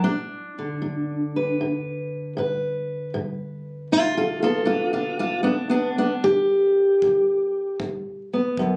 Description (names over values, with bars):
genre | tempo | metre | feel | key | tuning
acoustic country blues, solo or duo | 77 BPM | 4/4 | swing 67% on 8ths | unclear | A4 = 441 Hz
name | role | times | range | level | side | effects
fingerpicked steel-string acoustic guitar | melody | 0.0-8.8 s | F#2 to B4 | -24 LUFS | equal | none
kick drum | drums | 6.2-8.8 s | none | -42 LUFS | equal | none
room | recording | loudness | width
moderate small room reverb, RT60 0.5 s | recorded on a phone in the room, club reverb, compression | -23 LUFS | mono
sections
0.0-8.8 A section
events
none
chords
0.0 G